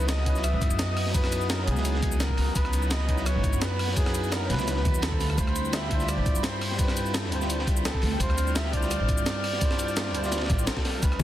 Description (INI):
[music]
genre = liquid drum and bass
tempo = 170 BPM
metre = 4/4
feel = straight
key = unclear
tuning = A4 = 440 Hz
[part]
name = warm flugelhorn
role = melody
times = 0.0-11.2 s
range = G#4 to E5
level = -34 LUFS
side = equal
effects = ping-pong delay
[part]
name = bell-like tine electric piano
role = accompaniment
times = 0.0-11.2 s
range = F#3 to B#4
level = -33 LUFS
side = equal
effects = phaser, ping-pong delay
[part]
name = airy breathy pad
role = sustained chords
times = 0.0-11.2 s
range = B3 to F6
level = -35 LUFS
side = equal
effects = chorus, phaser, vintage 12-bit sampler grit
[part]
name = upright bass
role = bass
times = 0.0-11.2 s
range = G#1 to G2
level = -28 LUFS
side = equal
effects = none
[part]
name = breakbeat sampler-style drum kit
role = drums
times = 0.0-11.2 s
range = hi-hat, rim click, shaker, snare drum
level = -33 LUFS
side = equal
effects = none
[part]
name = crunchy breakbeat drum kit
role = drums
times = 0.1-11.2 s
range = hi-hat, ride cymbal, snare drum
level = -35 LUFS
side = equal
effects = high-pass filter on cymbals, high-pass filter on hats, high-pass filter on snare, high-pass filter on room
[part]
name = electronic kick drum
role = drums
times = 0.3-11.1 s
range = none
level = -28 LUFS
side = equal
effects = none
[part]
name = congas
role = percussion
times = 11.2 s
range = none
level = -24 LUFS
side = left 3 dB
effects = none
[sound]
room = studio reverb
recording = dense, heavily limited modern master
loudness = -24 LUFS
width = side -13 dB against mid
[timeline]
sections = 0.0-11.2 A section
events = none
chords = 0.0 C#m11; 5.2 Dm11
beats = 0.09 0.44 0.79 | 1.14 1.50 1.85 2.20 | 2.56 2.91 3.26 3.62 | 3.97 4.32 4.67 5.03 | 5.38 5.73 6.08 6.44 | 6.79 7.14 7.50 7.85 | 8.20 8.56 8.91 9.26 | 9.62 9.97 10.32 10.67 | 11.03